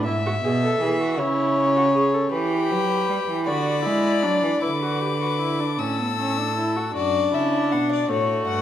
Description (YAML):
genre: classical, baroque-style fugue for string quartet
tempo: 53 BPM (dotted quarters)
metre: 6/8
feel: straight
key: D major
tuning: A4 = 440 Hz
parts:
  - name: warm violin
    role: second line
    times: 0.0-8.6 s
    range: D4 to E5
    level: -25 LUFS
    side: left 3 dB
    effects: none
  - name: dark viola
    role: accompaniment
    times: 0.0-8.6 s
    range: A3 to A4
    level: -25 LUFS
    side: right 1 dB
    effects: none
  - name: rich cello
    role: bass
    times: 0.0-8.6 s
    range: F#2 to G#3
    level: -25 LUFS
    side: right 3 dB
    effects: none
  - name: rich violin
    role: melody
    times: 2.3-8.6 s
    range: C#5 to E6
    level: -27 LUFS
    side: left 9 dB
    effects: none
room: wet recital hall reverb, RT60 1.4 s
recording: none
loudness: -20 LUFS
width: side -10 dB against mid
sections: 0.0-2.3 A section; 2.3-7.0 B section; 7.0-8.6 C section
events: none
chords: 0.0 E/G#; 1.2 A/C#; 2.3 Em; 3.5 E7/D; 4.6 D69; 5.8 A; 7.0 D/F#; 8.1 A